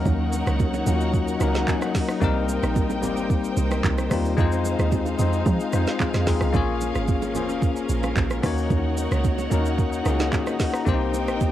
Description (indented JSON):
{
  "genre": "amapiano",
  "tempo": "111 BPM",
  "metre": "4/4",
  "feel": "straight",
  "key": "unclear",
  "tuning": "A4 = 440 Hz",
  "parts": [
    { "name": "bell-like tine electric piano", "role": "accompaniment", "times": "0.0-11.5 s", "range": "Gb3 to Bb5", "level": "-25 LUFS", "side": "left 6 dB", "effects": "cassette tape" },
    { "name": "warm studio string section", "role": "sustained chords", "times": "0.0-11.5 s", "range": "Db4 to G5", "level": "-30 LUFS", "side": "right 1 dB", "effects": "sidechain pumping, cassette tape" },
    { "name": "deep log drum bass", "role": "bass", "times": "0.0-11.5 s", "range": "F1 to F3", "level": "-25 LUFS", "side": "right 2 dB", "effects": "none" },
    { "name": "smooth R&B drum kit", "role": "drums", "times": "0.1-11.5 s", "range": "handclaps, hi-hat, kick drum, rim click, shaker, snare drum", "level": "-25 LUFS", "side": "right 2 dB", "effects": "cassette tape" },
    { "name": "congas and bongos", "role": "percussion", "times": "0.1-11.5 s", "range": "none", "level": "-34 LUFS", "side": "right 12 dB", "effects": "none" }
  ],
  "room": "little or no reverb",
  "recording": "home recording on cassette",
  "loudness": "-20 LUFS",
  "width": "side -12 dB against mid",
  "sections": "0.0-11.5 A section",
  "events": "none",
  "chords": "0.0 Ebm7; 2.2 Cm7; 4.4 Fm7; 6.5 Bbm7; 8.4 Ebm7; 10.9 Cm7",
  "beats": "| 0.06 0.60 1.14 1.68 | 2.22 2.76 3.30 3.84 | 4.38 4.92 5.46 6.00 | 6.54 7.08 7.62 8.16 | 8.71 9.25 9.79 10.33 | 10.87 11.41"
}